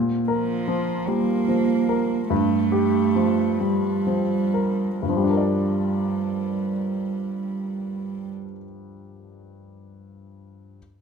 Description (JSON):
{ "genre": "neoclassical piano and strings", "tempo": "41-52 BPM (dotted quarters)", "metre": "6/8", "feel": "rubato", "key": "G minor", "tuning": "A4 = 441 Hz", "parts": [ { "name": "clear grand piano", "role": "accompaniment", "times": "0.0-10.8 s", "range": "G2 to D5", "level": "-25 LUFS", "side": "left 4 dB", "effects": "none" }, { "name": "warm cello", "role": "second line", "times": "0.3-8.3 s", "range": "F3 to Bb3", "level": "-24 LUFS", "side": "right 6 dB", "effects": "none" } ], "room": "moderate recital hall reverb, RT60 1.4 s", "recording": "minimal, uncompressed stereo recording", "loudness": "-21 LUFS", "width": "side -6 dB against mid", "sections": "0.0-5.0 A section; 5.0-7.9 B section", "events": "slowing down 0.0-5.0", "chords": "0.0 Bb5; 2.3 Gm7" }